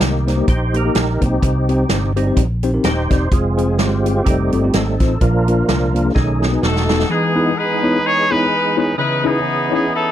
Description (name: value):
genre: uptempo gospel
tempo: 127 BPM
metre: 4/4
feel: swing 56% on 8ths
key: Eb major, E major from 7.1 s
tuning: A4 = 439 Hz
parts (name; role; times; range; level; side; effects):
- mellow tine electric piano; accompaniment; 0.0-9.9 s; Bb2 to D5; -20 LUFS; left 3 dB; medium stereo tremolo
- percussive tonewheel organ; sustained chords; 0.0-10.1 s; D#3 to D#5; -20 LUFS; right 2 dB; slow rotary speaker, overdrive, chorus vibrato
- fingered electric bass; bass; 0.0-7.0 s; Eb1 to C2; -19 LUFS; equal; none
- swinging big-band drum kit; drums; 0.0-7.1 s; hi-hat, kick drum, snare drum; -19 LUFS; equal; none
- clear horn section; melody; 6.6-10.1 s; B3 to C#5; -17 LUFS; left 1 dB; none
room: little or no reverb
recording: none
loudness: -14 LUFS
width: side -11 dB against mid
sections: 0.0-7.1 A section; 7.1-10.1 B section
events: tonewheel organ solo 0.0-7.1; drum fill 6.2-7.1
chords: 0.0 Eb; 1.4 Cm; 3.3 Fm; 4.3 F7; 5.2 Bb; 6.2 B7; 7.1 Emaj7; 9.0 C#m9